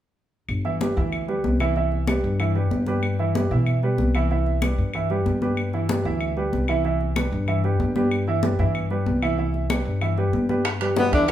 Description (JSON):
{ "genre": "Afro-Cuban jazz", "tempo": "189 BPM", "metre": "4/4", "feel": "straight", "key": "unclear", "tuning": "A4 = 440 Hz", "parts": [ { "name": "upright bass", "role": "bass", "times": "0.5-11.3 s", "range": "G1 to B2", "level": "-24 LUFS", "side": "left 1 dB", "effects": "none" }, { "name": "claves", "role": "percussion", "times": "0.5-11.3 s", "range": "none", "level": "-34 LUFS", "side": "left 4 dB", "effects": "none" }, { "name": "congas", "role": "percussion", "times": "0.5-11.3 s", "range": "none", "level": "-28 LUFS", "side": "left 2 dB", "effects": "none" }, { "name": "warm grand piano", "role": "accompaniment", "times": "0.6-11.3 s", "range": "E3 to E5", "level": "-25 LUFS", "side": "right 3 dB", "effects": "none" }, { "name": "timbales", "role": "percussion", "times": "10.6-11.3 s", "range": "none", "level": "-30 LUFS", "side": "right 7 dB", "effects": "none" }, { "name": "bongos", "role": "percussion", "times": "10.7-11.3 s", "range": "none", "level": "-30 LUFS", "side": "left 5 dB", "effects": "none" }, { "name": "breathy tenor saxophone", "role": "melody", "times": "11.0-11.3 s", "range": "B3 to D4", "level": "-20 LUFS", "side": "left 1 dB", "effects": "none" }, { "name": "breathy trombone", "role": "second line", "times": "11.0-11.3 s", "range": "B2 to E3", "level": "-24 LUFS", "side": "left 5 dB", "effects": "none" } ], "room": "moderate large studio reverb, RT60 1.1 s", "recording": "band playing live in one room", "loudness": "-20 LUFS", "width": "side -11 dB against mid", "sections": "0.5-10.7 A section", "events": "none", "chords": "0.5 G6; 1.8 Cmaj7; 5.6 G6; 6.8 Cmaj7; 10.7 G6" }